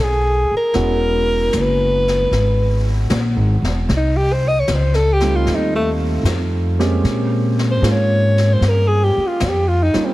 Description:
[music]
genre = jazz ballad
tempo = 76 BPM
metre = 4/4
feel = swing 69% on 8ths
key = unclear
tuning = A4 = 442 Hz
[part]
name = breathy alto saxophone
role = melody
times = 0.0-10.1 s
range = A3 to Eb5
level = -18 LUFS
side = left 1 dB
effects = none
[part]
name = upright bass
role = bass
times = 0.0-10.0 s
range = E1 to Bb2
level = -17 LUFS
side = equal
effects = none
[part]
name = warm grand piano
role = accompaniment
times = 0.7-10.1 s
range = G3 to Ab4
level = -23 LUFS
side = right 3 dB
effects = none
[part]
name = jazz brush drum kit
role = drums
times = 0.7-10.1 s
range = brushed snare drum, hi-hat, snare drum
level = -28 LUFS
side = left 2 dB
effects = none
[sound]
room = light reverb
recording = heavily compressed radio sound, multiband compression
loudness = -14 LUFS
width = side -17 dB against mid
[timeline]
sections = 0.0-10.1 A section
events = alto saxophone solo 0.0-10.1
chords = 0.0 N.C.; 0.7 E69; 3.9 F7; 7.0 Bbm9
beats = | 0.74 1.52 2.31 3.09 | 3.88 4.67 5.45 6.24 | 7.04 7.83 8.61 9.40

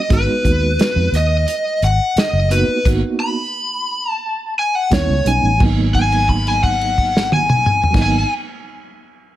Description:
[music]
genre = straight-eighth soul blues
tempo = 87 BPM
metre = 4/4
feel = straight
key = G# minor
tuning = A4 = 440 Hz
[part]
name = lead guitar through a small cranked amp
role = melody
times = 0.0-8.3 s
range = B4 to B5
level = -18 LUFS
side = left 1 dB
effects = overdrive
[part]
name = reed electric piano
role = accompaniment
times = 0.1-8.3 s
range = F#3 to F#4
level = -22 LUFS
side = right 4 dB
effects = fast tremolo
[part]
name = vintage muted fingered electric bass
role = bass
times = 0.1-8.2 s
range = F#1 to E#2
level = -18 LUFS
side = equal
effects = none
[part]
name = warm soul drum kit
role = drums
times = 0.1-8.1 s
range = crash cymbal, hi-hat, kick drum, snare drum, toms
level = -19 LUFS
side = equal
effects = none
[sound]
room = light reverb, studio ambience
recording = none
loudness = -14 LUFS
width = side -13 dB against mid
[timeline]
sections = 0.0-5.6 A section; 5.6-8.4 B section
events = stop 2.8-4.9; held note 5.6-7.9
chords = 0.1 G#m7; 4.9 A7; 5.6 G#m7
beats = | 0.09 0.78 1.47 2.16 | 2.85 3.53 4.22 4.91 | 5.60 6.29 6.97 7.66

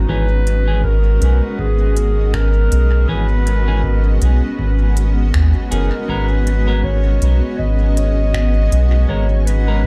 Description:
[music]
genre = ambient dub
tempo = 80 BPM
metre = 4/4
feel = swing 58% on 16ths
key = unclear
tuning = A4 = 440 Hz
[part]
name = granular cloud pad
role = sustained chords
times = 0.0-9.9 s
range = G#3 to D#5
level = -27 LUFS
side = equal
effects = built-in reverb, vintage 12-bit sampler grit
[part]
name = soft dub sub bass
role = bass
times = 0.0-9.9 s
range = F#1 to D#2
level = -17 LUFS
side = equal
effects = none
[part]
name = dark clarinet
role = melody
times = 0.1-9.9 s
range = G#4 to D#5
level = -26 LUFS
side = equal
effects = dub echo
[part]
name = semi-hollow electric guitar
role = stabs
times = 0.1-9.8 s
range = E3 to A#4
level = -30 LUFS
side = equal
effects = dub echo
[part]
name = electronic kick drum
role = drums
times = 0.1-9.9 s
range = none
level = -26 LUFS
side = equal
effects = none
[part]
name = organic electronic drum kit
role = drums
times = 0.5-9.6 s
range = finger snaps, hi-hat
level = -34 LUFS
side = equal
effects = overdrive, studio reverb, dub echo
[part]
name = backwards swelling texture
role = texture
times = 7.7-9.9 s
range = B3 to G#4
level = -33 LUFS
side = equal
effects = built-in reverb, analog chorus
[sound]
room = light reverb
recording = none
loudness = -16 LUFS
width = mono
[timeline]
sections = 0.0-9.9 A section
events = none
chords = 0.1 E6/G#; 6.1 G#madd9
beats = | 0.09 0.84 1.59 2.34 | 3.09 3.84 4.59 5.34 | 6.09 6.84 7.59 8.34 | 9.09 9.84

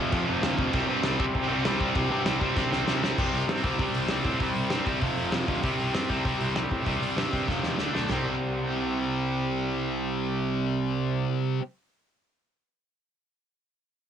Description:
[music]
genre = punk rock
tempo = 195 BPM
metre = 4/4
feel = straight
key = unclear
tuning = A4 = 439 Hz
[part]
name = distorted electric guitar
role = riff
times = 0.0-11.6 s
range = F2 to D4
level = -28 LUFS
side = right 7 dB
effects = distortion, cassette tape
[part]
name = tight distorted guitar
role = riff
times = 0.0-11.6 s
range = F2 to D4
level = -30 LUFS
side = left 10 dB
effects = distortion, cassette tape
[part]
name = fuzz picked electric bass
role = bass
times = 0.0-11.2 s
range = F1 to C3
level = -34 LUFS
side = equal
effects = overdrive
[part]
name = loose indie drum kit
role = drums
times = 0.1-8.2 s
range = crash cymbal, hi-hat, kick drum, snare drum, toms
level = -30 LUFS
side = equal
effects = cassette tape
[sound]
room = light reverb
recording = home recording on cassette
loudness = -24 LUFS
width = side -8 dB against mid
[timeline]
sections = 0.0-3.2 A section; 3.2-8.1 B section; 8.1-10.6 C section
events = drum fill 2.6-3.2, 7.5-8.1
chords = 0.0 F5; 0.7 C5; 5.0 F5; 5.6 C5; 7.5 F5; 7.8 D5; 8.1 C5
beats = 0.12 0.42 | 0.73 1.03 1.34 1.65 | 1.95 2.26 2.56 2.87 | 3.17 3.48 3.79 4.09 | 4.40 4.71 5.01 5.32 | 5.63 5.94 6.25 6.55 | 6.86 7.17 7.48 7.79 | 8.09 8.40 8.71 9.02 | 9.33 9.64 9.95 10.25

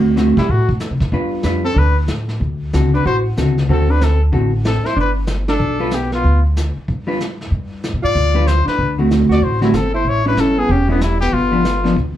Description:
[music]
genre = jazz, small-group swing and bop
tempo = 188 BPM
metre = 4/4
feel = swing 63% on 8ths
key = unclear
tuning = A4 = 440 Hz
[part]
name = vintage hollow-body jazz guitar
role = accompaniment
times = 0.0-11.9 s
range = D3 to B4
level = -18 LUFS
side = right 1 dB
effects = none
[part]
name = upright bass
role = bass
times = 0.0-12.2 s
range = E1 to C3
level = -17 LUFS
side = equal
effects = none
[part]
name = vintage brush drum kit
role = drums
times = 0.2-12.2 s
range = brushed snare drum, hi-hat, kick drum, snare drum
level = -24 LUFS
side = equal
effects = none
[part]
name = bright trumpet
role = melody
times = 0.4-12.0 s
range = B3 to D5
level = -20 LUFS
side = left 4 dB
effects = none
[part]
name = mellow alto saxophone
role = second line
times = 0.4-12.0 s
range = D3 to F#4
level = -22 LUFS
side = right 2 dB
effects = none
[sound]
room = wet club reverb, RT60 0.5 s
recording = heard from further back in the room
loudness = -14 LUFS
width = side -12 dB against mid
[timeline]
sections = 0.0-12.2 A section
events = none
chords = 0.0 D7; 1.1 G7; 2.4 D7; 5.0 G7; 8.8 D7; 10.1 A7; 11.3 G7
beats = 0.17 0.49 0.81 | 1.13 1.45 1.77 2.08 | 2.40 2.73 3.04 3.36 | 3.68 4.00 4.32 4.64 | 4.96 5.28 5.60 5.92 | 6.24 6.55 6.87 7.19 | 7.51 7.83 8.14 8.46 | 8.78 9.10 9.41 9.73 | 10.05 10.37 10.69 11.00 | 11.32 11.64 11.96

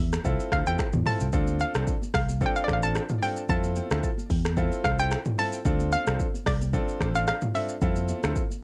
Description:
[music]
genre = afrobeats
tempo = 111 BPM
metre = 4/4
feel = swing 55% on 16ths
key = D minor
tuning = A4 = 441 Hz
[part]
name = fingered electric bass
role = bass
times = 0.0-8.3 s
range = A1 to F2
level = -30 LUFS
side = equal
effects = none
[part]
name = deep house drum kit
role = drums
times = 0.1-8.6 s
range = finger snaps, hi-hat, kick drum, rim click, shaker, toms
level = -31 LUFS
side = equal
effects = cassette tape
[part]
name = congas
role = percussion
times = 0.1-8.6 s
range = none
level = -43 LUFS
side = equal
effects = none
[part]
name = clear grand piano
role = accompaniment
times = 0.2-8.4 s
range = C4 to A4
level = -35 LUFS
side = equal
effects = cassette tape
[part]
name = hollow square pluck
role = melody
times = 0.5-8.1 s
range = D5 to A5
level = -31 LUFS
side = equal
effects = chorus, cassette tape, tape echo
[sound]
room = light reverb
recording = home recording on cassette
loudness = -26 LUFS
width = mono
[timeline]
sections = 0.0-8.6 A section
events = none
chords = 0.0 Fmaj7; 1.3 Dm7; 3.5 Fmaj7; 5.7 Dm7; 7.8 Fmaj7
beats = 0.25 0.79 | 1.33 1.87 2.41 2.95 | 3.49 4.03 4.57 5.11 | 5.65 6.20 6.74 7.28 | 7.82 8.36

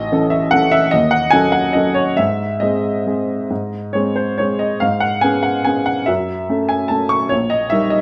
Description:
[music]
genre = classical, piano waltz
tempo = 132-155 BPM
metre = 3/4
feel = rubato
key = unclear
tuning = A4 = 439 Hz
[part]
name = warm upright piano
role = solo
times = 0.0-8.0 s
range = A1 to C#6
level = -17 LUFS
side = equal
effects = none
[sound]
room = moderate recital hall reverb, RT60 1.5 s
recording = close, detailed microphones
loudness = -17 LUFS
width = mono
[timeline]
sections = 0.0-8.0 A section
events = none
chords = 0.0 A; 0.9 D#m7b5; 2.2 G#; 4.8 C#5/G#; 6.1 F#m7; 7.3 D#/A#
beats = 0.11 0.52 | 0.92 1.32 1.74 | 2.18 2.62 3.06 | 3.50 3.94 4.39 | 4.82 5.24 5.67 | 6.09 6.49 6.90 | 7.31 7.72

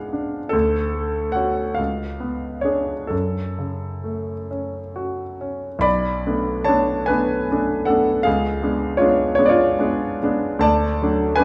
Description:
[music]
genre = classical, romantic nocturne for solo piano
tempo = 42-56 BPM (dotted quarters)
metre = 12/8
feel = rubato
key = unclear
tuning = A4 = 441 Hz
[part]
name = clear concert grand piano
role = solo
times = 0.0-11.4 s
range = B1 to B5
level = -21 LUFS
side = equal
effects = none
[sound]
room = wet recital hall reverb, RT60 1.4 s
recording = dark, warm production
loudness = -21 LUFS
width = mono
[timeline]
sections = 0.0-5.9 A section; 5.9-11.4 B section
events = none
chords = 0.0 C#7b9; 0.5 Dmaj7; 1.8 C#7b9; 3.1 F#m; 5.9 Bm7; 8.3 C#7b9; 10.6 D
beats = | 0.54 1.79 3.12 4.51 | 5.85 7.10 8.27 9.38 | 10.64

